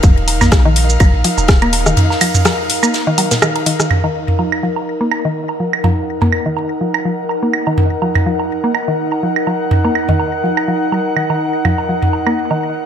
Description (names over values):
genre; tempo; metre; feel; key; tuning
minimal techno; 124 BPM; 4/4; swing 55% on 16ths; Eb minor; A4 = 444 Hz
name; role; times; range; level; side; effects
mallet-like synth pluck; riff; 0.0-12.5 s; Bb2 to Bb3; -19 LUFS; left 1 dB; chorus, sidechain pumping, ping-pong delay
punchy sub bass; bass; 0.0-1.9 s; Eb1 to Bb1; -16 LUFS; equal; sidechain pumping
electronic kick drum; drums; 0.0-1.6 s; none; -10 LUFS; equal; studio reverb
garage drum kit; drums; 0.0-3.9 s; hi-hat, rim click, shaker; -17 LUFS; equal; low-pass filter on snare, studio reverb, low-pass filter on perc, low-pass filter on hats
tight metal drum kit; drums; 0.0-3.8 s; hi-hat, ride cymbal, snare drum; -26 LUFS; left 3 dB; sidechain pumping on cymbals, high-pass filter on cymbals, studio reverb, sidechain pumping on hats, high-pass filter on hats, high-pass filter on snare, high-pass filter on room
electronic toms and woodblock; percussion; 0.0-12.6 s; none; -17 LUFS; right 2 dB; studio reverb
airy breathy pad; texture; 0.0-12.9 s; Eb4 to Gb5; -19 LUFS; equal; chorus, sidechain pumping
room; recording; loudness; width
moderate digital room reverb, RT60 1.3 s, digital ambience; none; -13 LUFS; side -8 dB against mid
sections
0.0-3.9 A section; 3.9-12.9 B section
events
drop 0.0-3.9; break 2.0-3.9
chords
0.0 Eb5; 3.9 Ebm